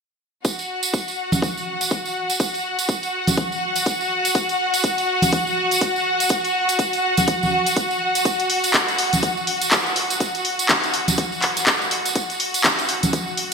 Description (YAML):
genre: piano house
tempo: 123 BPM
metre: 4/4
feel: swing 59% on 16ths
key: unclear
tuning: A4 = 439 Hz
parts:
  - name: clear symphonic string section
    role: sustained chords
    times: 0.4-13.5 s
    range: F#4 to F#5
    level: -22 LUFS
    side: left 1 dB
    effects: sidechain pumping
  - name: electronic kick drum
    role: drums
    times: 0.4-13.2 s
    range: none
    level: -25 LUFS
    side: equal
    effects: high-pass filter on kick, studio reverb
  - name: house drum kit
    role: drums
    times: 0.4-13.5 s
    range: handclaps, hi-hat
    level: -21 LUFS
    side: left 1 dB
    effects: low-pass filter on hats, studio reverb, low-pass filter on snare, gated reverb
  - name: tambourine and congas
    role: percussion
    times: 0.4-13.4 s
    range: none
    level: -24 LUFS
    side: right 3 dB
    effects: none
room: wet lush hall reverb, RT60 2.3 s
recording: bright 1980s-style digital production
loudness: -18 LUFS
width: side -5 dB against mid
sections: 0.4-13.5 A section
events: filter sweep on drum 0.4-13.5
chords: none